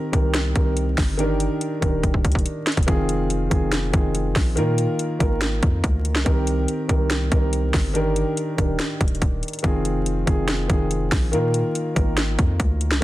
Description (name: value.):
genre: hip hop, trap.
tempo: 142 BPM.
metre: 4/4.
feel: half-time.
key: F dorian.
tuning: A4 = 440 Hz.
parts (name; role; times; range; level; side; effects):
dark concert grand piano; accompaniment; 0.0-13.0 s; Eb3 to Bb4; -24 LUFS; equal; low-pass filter.
hard-hitting 808-style bass; bass; 0.1-13.0 s; Eb1 to Bb2; -24 LUFS; equal; none.
trap drum kit; drums; 0.1-13.0 s; hi-hat, kick drum, snare drum; -22 LUFS; equal; vintage 12-bit sampler grit.
room: little or no reverb.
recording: dense, heavily limited modern master, vinyl crackle.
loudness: -19 LUFS.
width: side -16 dB against mid.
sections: 0.0-13.0 A section.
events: drum fill 2.0-2.9.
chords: 0.0 Cm7; 1.2 Ebmaj7; 2.9 Fm7; 4.6 Bbsus4; 6.3 Cm7; 7.9 Ebmaj7; 9.6 Fm7; 11.3 Bbsus4.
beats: 0.34 0.77 | 1.19 1.61 2.03 2.46 | 2.88 3.30 3.72 4.15 | 4.57 4.99 5.41 5.84 | 6.26 6.68 7.10 7.53 | 7.95 8.37 8.79 9.22 | 9.64 10.06 10.48 10.91 | 11.33 11.75 12.18 12.60 | 13.02.